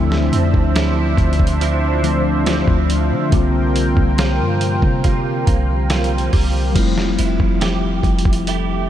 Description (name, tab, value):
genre	contemporary R&B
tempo	70 BPM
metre	4/4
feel	straight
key	F major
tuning	A4 = 440 Hz
part	mellow tine electric piano	accompaniment	0.0-8.9 s	D3 to F4	-21 LUFS	left 6 dB	medium stereo tremolo
part	warm analog pad	sustained chords	0.0-6.7 s	F3 to G5	-24 LUFS	right 1 dB	chorus
part	direct-recorded clean electric guitar	arpeggios	0.0-8.9 s	C3 to G4	-25 LUFS	right 10 dB	ensemble chorus, analog delay
part	clean 808-style bass	bass	0.0-8.9 s	F1 to D3	-19 LUFS	equal	none
part	dusty soul sampler-style drum kit	drums	0.1-8.7 s	crash cymbal, hi-hat, kick drum, snare drum	-19 LUFS	equal	none
room	light reverb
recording	none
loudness	-14 LUFS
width	side -11 dB against mid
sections	0.0-6.8 A section; 6.8-8.9 A section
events	none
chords	0.0 Dm9; 3.3 C7sus4; 6.8 Fmaj9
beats	0.76 1.61 2.47 | 3.33 4.18 5.04 5.90 | 6.75 7.61 8.47